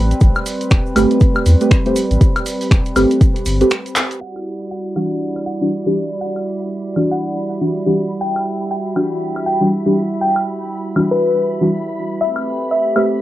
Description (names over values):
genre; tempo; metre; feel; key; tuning
deep house; 120 BPM; 4/4; swing 60% on 16ths; E minor; A4 = 438 Hz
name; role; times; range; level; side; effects
warm analog pad; sustained chords; 0.0-13.2 s; G3 to E5; -23 LUFS; right 1 dB; chorus, vintage 12-bit sampler grit, sidechain pumping, cassette tape
warm sub bass; bass; 0.0-3.6 s; E1 to E2; -15 LUFS; equal; sidechain pumping
punchy analog drum machine; drums; 0.1-13.1 s; crash cymbal, finger snaps, handclaps, hi-hat, woodblock; -22 LUFS; left 1 dB; low-pass filter on hats, cassette tape, low-pass filter on perc, low-pass filter on snare, low-pass filter on cymbals, low-pass filter on room
egg shaker; percussion; 0.1-4.2, 12.2-13.2 s; none; -34 LUFS; right 9 dB; none
electronic kick drum; drums; 0.2-3.3 s; none; -12 LUFS; equal; overdrive, cassette tape
deep mellow chord stab; stabs; 1.0-13.2 s; E3 to C5; -18 LUFS; equal; chorus, sidechain pumping, cassette tape, tape echo
soft round pluck; melody; 4.2-13.2 s; B4 to G5; -21 LUFS; left 1 dB; wide subtle chorus, cassette tape, tape echo
string machine, violins; texture; 4.2-13.2 s; B5; -37 LUFS; equal; ensemble chorus, sidechain pumping, cassette tape
room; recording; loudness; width
moderate small room reverb, RT60 0.5 s; home recording on cassette, low-pass filter; -14 LUFS; side -14 dB against mid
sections
0.0-4.2 A section; 4.2-13.2 B section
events
break 3.7-4.2; drum fill 4.0; band accent 4.0; filter sweep on drum 4.2-13.2; filter sweep 4.2-13.2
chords
0.0 Am9; 4.2 Em9; 12.2 Am9